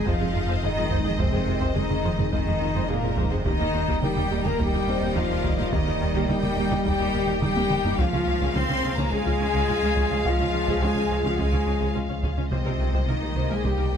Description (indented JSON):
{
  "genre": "cinematic, hybrid orchestral and electronic film score",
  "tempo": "106 BPM",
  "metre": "4/4",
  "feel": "straight",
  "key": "F minor",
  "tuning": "A4 = 440 Hz",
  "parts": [
    { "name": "rich studio violin section", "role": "melody", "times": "0.0-14.0 s", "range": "Eb5 to F5", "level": "-36 LUFS", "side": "left 3 dB", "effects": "none" },
    { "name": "rich symphonic violin section", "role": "second line", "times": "0.0-14.0 s", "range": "Bb4 to C6", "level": "-33 LUFS", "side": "left 1 dB", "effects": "none" },
    { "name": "dark trombone section", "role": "sustained chords", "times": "0.0-14.0 s", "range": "Eb3 to Bb3", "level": "-36 LUFS", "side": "right 3 dB", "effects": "none" },
    { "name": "glassy FM pad", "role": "sustained chords", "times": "0.0-14.0 s", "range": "Db3 to C5", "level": "-33 LUFS", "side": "left 1 dB", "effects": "ensemble chorus, built-in reverb" },
    { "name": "warm French horn section", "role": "sustained chords", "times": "0.0-14.0 s", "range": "Bb3 to C5", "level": "-29 LUFS", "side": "left 5 dB", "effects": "none" },
    { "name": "rich symphonic cello section", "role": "bass", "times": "0.0-14.0 s", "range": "Bb2 to C4", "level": "-31 LUFS", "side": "right 3 dB", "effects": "none" },
    { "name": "sub bass with octave", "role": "bass", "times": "0.0-14.0 s", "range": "Eb1 to Db2", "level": "-32 LUFS", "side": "equal", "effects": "none" },
    { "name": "impact", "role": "sound effects", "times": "0.0-1.2 s", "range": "none", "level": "barely audible", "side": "none", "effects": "none" },
    { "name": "dark baby grand piano", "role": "texture", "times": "0.0-14.0 s", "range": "G3 to F5", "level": "-37 LUFS", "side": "left 3 dB", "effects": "none" },
    { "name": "warm symphonic viola section", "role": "accompaniment", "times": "0.1-14.0 s", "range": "Ab3 to C5", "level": "-34 LUFS", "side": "right 1 dB", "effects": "none" },
    { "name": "tight sequenced synth", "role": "arpeggios", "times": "0.1-14.0 s", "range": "C3 to Eb4", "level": "-37 LUFS", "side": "right 1 dB", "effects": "none" },
    { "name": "round analog bass", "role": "riff", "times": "0.1-14.0 s", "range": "C2 to F3", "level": "-32 LUFS", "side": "right 2 dB", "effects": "none" },
    { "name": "warm symphonic double bass section", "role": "bass", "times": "0.1-14.0 s", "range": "C2 to F2", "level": "-31 LUFS", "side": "right 3 dB", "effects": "none" },
    { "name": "solo taiko drums", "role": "drums", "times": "0.1-14.0 s", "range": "none", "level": "-30 LUFS", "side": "equal", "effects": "none" }
  ],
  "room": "moderate scoring stage reverb, RT60 1.8 s",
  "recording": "close, detailed microphones",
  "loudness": "-22 LUFS",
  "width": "side -8 dB against mid",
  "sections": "0.0-14.0 A section",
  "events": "impact 0.0-1.2; drum fill 7.4-8.0",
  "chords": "0.0 Fm7; 3.5 Eb; 8.0 Db; 12.5 Cm7"
}